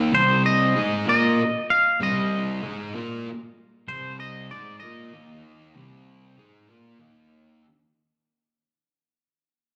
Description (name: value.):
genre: rock.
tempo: 64 BPM (dotted quarters).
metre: 6/8.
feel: straight.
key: C minor.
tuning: A4 = 440 Hz.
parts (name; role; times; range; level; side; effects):
thick fuzz guitar; riff; 0.0-7.6 s; C3 to Bb4; -27 LUFS; equal; distortion, slapback echo.
twangy electric guitar; melody; 0.1-7.0 s; C5 to F5; -24 LUFS; equal; slapback echo.
room: light reverb.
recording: live gig heard through the venue's PA, club reverb.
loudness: -22 LUFS.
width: mono.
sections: 0.0-7.6 A section.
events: fade-out 0.0-7.6.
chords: 0.1 Cm; 5.1 Eb5; 5.8 Cm; 7.0 Eb5.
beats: | 0.14 1.07 | 2.01 2.95 | 3.89 4.83 | 5.76 6.70.